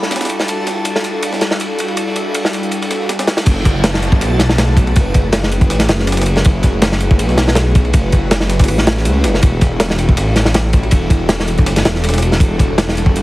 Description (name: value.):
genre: drum and bass, jungle.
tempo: 161 BPM.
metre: 4/4.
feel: swing 53% on 16ths.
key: F# phrygian.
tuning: A4 = 440 Hz.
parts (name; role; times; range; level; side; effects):
airy breathy pad; sustained chords; 0.0-13.2 s; G3 to A4; -21 LUFS; equal; chorus.
crunchy breakbeat drum kit; drums; 0.0-13.2 s; crash cymbal, kick drum, ride cymbal, snare drum; -14 LUFS; equal; high-pass filter on kick, high-pass filter on cymbals, high-pass filter on snare, high-pass filter on room.
backwards swelling texture; texture; 0.0-3.5 s; A5 to A6; -30 LUFS; equal; built-in reverb.
breakbeat sampler-style drum kit; drums; 0.1-13.2 s; hi-hat, snare drum; -25 LUFS; equal; high-pass filter on hats, high-pass filter on snare.
detuned saw bass; bass; 3.5-13.2 s; E1 to C#2; -16 LUFS; equal; tube saturation.
downlifter; sound effects; 3.5-6.4 s; none; -28 LUFS; right 1 dB; none.
room: light reverb, small room reverb.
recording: heavily compressed radio sound, vinyl crackle.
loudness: -12 LUFS.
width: side -18 dB against mid.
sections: 0.0-3.5 A section; 3.5-13.2 B section.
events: drop 3.5-13.2.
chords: 0.0 Em11; 3.5 F#m11; 9.4 Em11.